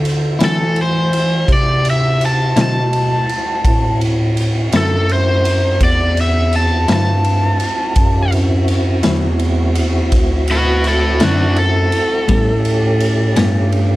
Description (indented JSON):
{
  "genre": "slow blues",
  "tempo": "56 BPM (dotted quarters)",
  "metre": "12/8",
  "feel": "straight",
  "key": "unclear",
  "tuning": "A4 = 441 Hz",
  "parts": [
    { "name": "tonewheel organ", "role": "sustained chords", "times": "0.0-14.0 s", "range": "A3 to C5", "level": "-24 LUFS", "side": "right 1 dB", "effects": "chorus vibrato, slow rotary speaker" },
    { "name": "dark bass clarinet", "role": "bass", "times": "0.0-14.0 s", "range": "D2 to E3", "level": "-16 LUFS", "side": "equal", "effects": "none" },
    { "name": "raw garage drum kit", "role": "drums", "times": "0.0-13.9 s", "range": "kick drum, ride cymbal, snare drum", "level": "-19 LUFS", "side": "equal", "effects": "none" },
    { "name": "cranked stack guitar", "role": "melody", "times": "0.4-13.7 s", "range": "D4 to A5", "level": "-18 LUFS", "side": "left 1 dB", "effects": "overdrive" },
    { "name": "clean electric guitar", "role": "accompaniment", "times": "0.4-13.6 s", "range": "A2 to E4", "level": "-18 LUFS", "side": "left 3 dB", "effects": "tremolo" }
  ],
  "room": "small room ambience",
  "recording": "none",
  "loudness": "-13 LUFS",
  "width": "side -17 dB against mid",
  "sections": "0.0-14.0 A section",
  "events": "overdriven electric guitar solo 0.0-14.0",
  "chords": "0.0 D9; 12.3 A9"
}